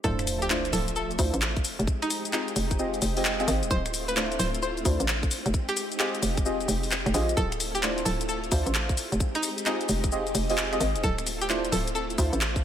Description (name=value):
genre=UK garage, two-step garage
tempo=131 BPM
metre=4/4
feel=swing 65% on 16ths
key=unclear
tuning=A4 = 441 Hz
part: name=string-like resonator pluck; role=melody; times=0.0-12.1 s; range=Eb4 to C5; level=-33 LUFS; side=right 1 dB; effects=chorus, analog delay
part: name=soft string machine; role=sustained chords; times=0.0-12.6 s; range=F3 to E5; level=-36 LUFS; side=equal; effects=ensemble chorus, sidechain pumping
part: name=deep mellow chord stab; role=stabs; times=0.0-12.4 s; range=A3 to Eb5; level=-31 LUFS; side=equal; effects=chorus, analog delay
part: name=hollow knocking FM bass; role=bass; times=0.0-12.6 s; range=D1 to D2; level=-29 LUFS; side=equal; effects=none
part: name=electronic kick drum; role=drums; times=0.0-12.6 s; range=none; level=-28 LUFS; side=equal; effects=none
part: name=garage drum kit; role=drums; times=0.0-12.6 s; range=finger snaps, handclaps, hi-hat, shaker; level=-30 LUFS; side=left 2 dB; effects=none
part: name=sub drop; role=sound effects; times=0.0-1.9 s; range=none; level=-37 LUFS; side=equal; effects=none
room=moderate lush hall reverb, RT60 1.9 s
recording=dreamy mix soaked in reverb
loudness=-24 LUFS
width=side -10 dB against mid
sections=0.0-12.6 A section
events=drop 0.0-12.6; impact 0.0-1.9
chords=0.0 Dm9; 1.6 Fm9; 3.7 Dm9; 5.3 Fm9; 7.4 Dm9; 9.0 Fm9; 11.0 Dm9